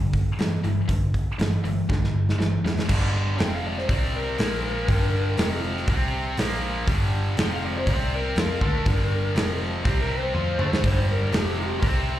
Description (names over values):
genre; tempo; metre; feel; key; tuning
blues rock power trio and southern rock; 121 BPM; 4/4; straight; G minor; A4 = 440 Hz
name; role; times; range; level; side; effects
tight distorted guitar; riff; 0.0-12.2 s; F2 to F4; -28 LUFS; equal; distortion, slapback echo
vintage muted picked electric bass; bass; 0.0-12.2 s; F1 to G2; -26 LUFS; equal; none
big rock drum kit; drums; 0.1-11.9 s; crash cymbal, hi-hat, kick drum, snare drum, toms; -26 LUFS; equal; none
lead guitar through a small cranked amp; melody; 3.4-11.8 s; G4 to G5; -30 LUFS; left 2 dB; overdrive, slapback echo
room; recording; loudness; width
little or no reverb; live gig heard through the venue's PA, club reverb; -21 LUFS; side -13 dB against mid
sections
0.0-2.9 A section; 2.9-12.2 B section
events
drum fill 1.9-2.9, 10.3-10.8; lead electric guitar solo 2.9-12.2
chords
0.0 G5; 3.4 F5; 3.9 C5; 4.4 Bb5; 4.9 Gm; 5.4 F5; 5.9 C5; 6.4 Bb5; 6.9 G5; 7.4 F5; 7.9 C5; 8.4 Gm; 9.4 F5; 9.9 C5; 10.3 G5; 11.3 F5